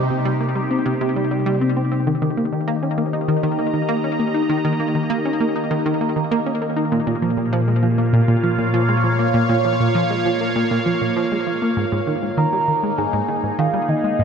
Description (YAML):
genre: ambient, sequencer-driven space music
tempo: 99 BPM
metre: 4/4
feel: straight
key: unclear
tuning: A4 = 438 Hz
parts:
  - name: phased analog pad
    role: sustained chords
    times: 0.0-14.2 s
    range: Bb2 to Bb5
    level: -20 LUFS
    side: equal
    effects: phaser, chorus
  - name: tight sequenced synth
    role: riff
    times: 0.0-14.2 s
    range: Ab2 to Eb4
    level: -21 LUFS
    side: equal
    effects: chorus, ping-pong delay
  - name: soft octave-layered synth lead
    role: melody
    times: 12.4-14.2 s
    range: Eb5 to Bb5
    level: -20 LUFS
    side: equal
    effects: chorus, cassette tape, ping-pong delay
room: wet plate reverb, RT60 3.6 s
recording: echo-heavy mix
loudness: -17 LUFS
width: side -6 dB against mid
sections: 0.0-2.1 A section; 2.1-14.2 B section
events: none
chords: 0.0 Cm7; 2.1 Eb; 6.9 Bbm; 11.8 Absus2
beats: 0.25 0.86 1.47 | 2.07 2.68 3.28 3.89 | 4.50 5.10 5.71 6.32 | 6.92 7.53 8.13 8.74 | 9.35 9.95 10.56 11.16 | 11.77 12.38 12.98 13.59 | 14.19